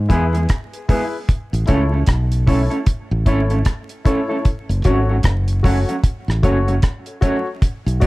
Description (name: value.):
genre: roots reggae.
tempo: 76 BPM.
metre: 4/4.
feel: swing 60% on 16ths.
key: unclear.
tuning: A4 = 440 Hz.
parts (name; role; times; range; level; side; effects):
fingered electric bass; bass; 0.0-8.1 s; F#1 to E2; -17 LUFS; equal; none.
mellow electric guitar; accompaniment; 0.1-8.1 s; F#3 to A4; -23 LUFS; right 2 dB; dub echo.
dark concert grand piano; stabs; 0.1-8.1 s; E4 to D5; -24 LUFS; left 4 dB; none.
deep reggae drum kit; drums; 0.1-8.1 s; hi-hat, kick drum, rim click; -17 LUFS; equal; none.
room: light reverb.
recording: dark, warm production, vinyl crackle.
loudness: -16 LUFS.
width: side -20 dB against mid.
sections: 0.0-8.1 A section.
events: none.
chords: 0.0 E; 1.3 A; 4.5 F#m.